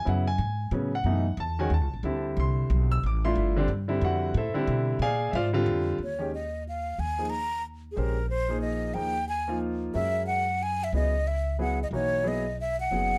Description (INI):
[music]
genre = modal jazz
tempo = 182 BPM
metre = 3/4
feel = swing 64% on 8ths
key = Eb phrygian from 6.0 s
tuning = A4 = 440 Hz
[part]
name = warm grand piano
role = accompaniment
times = 0.0-13.2 s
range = B2 to E6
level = -32 LUFS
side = equal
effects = none
[part]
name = upright bass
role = bass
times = 0.0-13.2 s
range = Gb1 to B2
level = -31 LUFS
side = equal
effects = none
[part]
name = breathy mellow silver concert flute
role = melody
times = 6.0-13.2 s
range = Ab4 to Bb5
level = -31 LUFS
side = equal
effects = none
[sound]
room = light reverb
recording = dark, warm production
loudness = -28 LUFS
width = mono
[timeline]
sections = 0.0-6.0 A section; 6.0-13.2 B section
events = none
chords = 0.0 F#m11; 2.0 Dm11; 5.0 A#9; 6.0 Ebsus4; 9.9 Gb13sus4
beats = | 0.06 0.39 0.72 | 1.05 1.38 1.71 | 2.04 2.37 2.69 | 3.02 3.35 3.68 | 4.01 4.34 4.67 | 5.00 5.33 5.66 | 5.99 6.32 6.65 | 6.98 7.30 7.63 | 7.96 8.29 8.62 | 8.95 9.28 9.61 | 9.94 10.27 10.60 | 10.93 11.26 11.59 | 11.92 12.25 12.58 | 12.91